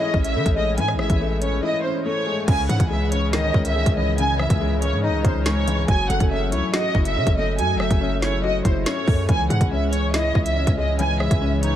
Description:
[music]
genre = hip hop, drill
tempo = 141 BPM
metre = 4/4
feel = half-time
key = C# minor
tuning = A4 = 442 Hz
[part]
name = warm symphonic violin section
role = melody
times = 0.0-11.8 s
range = B#4 to G#5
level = -24 LUFS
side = right 1 dB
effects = low-pass filter, analog delay
[part]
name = felt-muted upright piano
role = accompaniment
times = 0.0-11.8 s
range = C#3 to F#4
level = -25 LUFS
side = left 4 dB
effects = low-pass filter, analog delay
[part]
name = hollow soft pad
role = sustained chords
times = 0.0-11.8 s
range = C#3 to C#5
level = -30 LUFS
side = equal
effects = ensemble chorus
[part]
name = hard-hitting 808-style bass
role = bass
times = 0.1-11.8 s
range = F#1 to E3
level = -23 LUFS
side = equal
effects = none
[part]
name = drill drum kit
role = drums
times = 0.1-11.7 s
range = crash cymbal, hi-hat, kick drum, rim click, snare drum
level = -22 LUFS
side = equal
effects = none
[sound]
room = little or no reverb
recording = echo-heavy mix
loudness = -18 LUFS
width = side -11 dB against mid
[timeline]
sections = 0.0-2.5 A section; 2.5-11.8 B section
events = drums muted 1.6-2.5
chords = 0.0 Amaj7; 2.5 C#madd9; 5.9 F#m7; 9.3 C#m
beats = 0.35 | 0.78 1.20 1.63 2.05 | 2.48 2.90 3.33 3.76 | 4.18 4.61 5.03 5.46 | 5.88 6.31 6.74 7.16 | 7.59 8.01 8.44 8.86 | 9.29 9.71 10.14 10.56 | 10.99 11.42

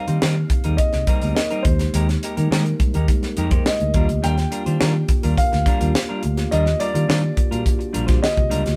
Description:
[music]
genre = polished 1980s jazz-funk pop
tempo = 105 BPM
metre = 4/4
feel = straight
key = Eb major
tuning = A4 = 440 Hz
[part]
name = warm grand piano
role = melody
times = 0.0-8.8 s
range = C5 to G5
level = -27 LUFS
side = equal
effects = none
[part]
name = clean electric guitar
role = riff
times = 0.0-8.7 s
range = G3 to C5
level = -30 LUFS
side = equal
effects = none
[part]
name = mellow tine electric piano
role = accompaniment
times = 0.1-8.8 s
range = D3 to Bb4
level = -30 LUFS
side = equal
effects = none
[part]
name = vintage muted fingered electric bass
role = bass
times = 0.1-8.8 s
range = Bb1 to Eb3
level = -24 LUFS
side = equal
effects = none
[part]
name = tight funk drum kit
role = drums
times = 0.1-8.8 s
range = hi-hat, kick drum, snare drum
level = -23 LUFS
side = equal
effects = none
[sound]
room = light reverb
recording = band playing live in one room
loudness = -20 LUFS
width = mono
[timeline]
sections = 0.0-8.8 A section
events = none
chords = 0.0 Abmaj9/Eb; 1.7 Fm11/Eb (rootless); 3.9 Ebmaj9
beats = 0.22 0.79 1.36 | 1.94 2.51 3.08 3.66 | 4.23 4.80 5.37 5.95 | 6.52 7.09 7.66 8.23

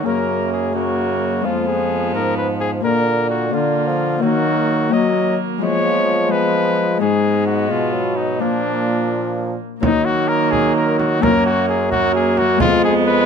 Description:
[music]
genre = classical, renaissance-style consort dance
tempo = 86 BPM (dotted quarters)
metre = 6/8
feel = straight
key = Eb minor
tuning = A4 = 440 Hz
[part]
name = clear cornet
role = melody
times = 0.0-13.3 s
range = D4 to Eb5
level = -21 LUFS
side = left 4 dB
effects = none
[part]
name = warm viola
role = second line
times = 0.0-13.3 s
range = Bb3 to Cb4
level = -24 LUFS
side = right 8 dB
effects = none
[part]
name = Celtic harp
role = accompaniment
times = 0.0-13.3 s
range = F2 to Gb4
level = -22 LUFS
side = left 9 dB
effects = none
[part]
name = warm bassoon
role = accompaniment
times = 0.1-13.3 s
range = Db3 to Ab3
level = -22 LUFS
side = equal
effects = none
[part]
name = bright trombone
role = bass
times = 0.1-13.3 s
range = F2 to Gb3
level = -22 LUFS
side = right 3 dB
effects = none
[part]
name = frame drum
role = percussion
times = 9.8-12.8 s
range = none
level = -23 LUFS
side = right 4 dB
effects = none
[sound]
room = moderate stone room reverb, RT60 1.2 s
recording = close, detailed microphones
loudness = -15 LUFS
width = side -6 dB against mid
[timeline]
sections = 0.0-9.8 A section; 9.8-13.3 A section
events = none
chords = 0.1 Gb; 1.4 Fdim; 2.8 Bb; 4.2 Ebm; 5.6 Fdim; 7.0 Abm; 8.4 Bb; 9.8 Ebm; 11.2 Gb; 12.6 Fdim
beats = | 0.06 0.76 | 1.45 2.14 | 2.84 3.53 | 4.22 4.92 | 5.61 6.31 | 7.01 7.71 | 8.41 9.12 | 9.82 10.52 | 11.21 11.91 | 12.60

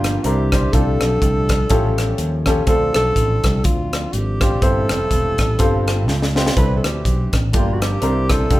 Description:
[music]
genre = uptempo gospel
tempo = 123 BPM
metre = 4/4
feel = swing 57% on 8ths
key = C major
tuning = A4 = 440 Hz
[part]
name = breathy alto saxophone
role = melody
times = 0.0-8.6 s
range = F4 to B4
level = -23 LUFS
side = equal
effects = none
[part]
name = clear baby grand piano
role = accompaniment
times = 0.0-8.6 s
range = G2 to C5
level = -22 LUFS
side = left 1 dB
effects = none
[part]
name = mellow French horn section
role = sustained chords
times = 0.0-8.6 s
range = E3 to B4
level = -29 LUFS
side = right 2 dB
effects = none
[part]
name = fingered electric bass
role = bass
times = 0.0-8.6 s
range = E1 to Eb2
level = -20 LUFS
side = equal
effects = none
[part]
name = crisp fusion drum kit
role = drums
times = 0.0-8.6 s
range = hi-hat, kick drum, rim click, snare drum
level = -19 LUFS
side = equal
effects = none
[sound]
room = light reverb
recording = band playing live in one room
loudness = -15 LUFS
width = side -16 dB against mid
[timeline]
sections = 0.0-8.6 A section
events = drum fill 6.1-6.6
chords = 0.2 C9; 0.7 F69; 1.7 Aaug7; 2.7 Dm7; 4.6 C; 5.6 G9sus4; 6.6 Cmaj9; 7.5 Gm7; 8.0 C9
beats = 0.25 | 0.73 1.22 1.70 2.19 | 2.68 3.16 3.65 4.13 | 4.62 5.11 5.59 6.08 | 6.57 7.05 7.54 8.02 | 8.51

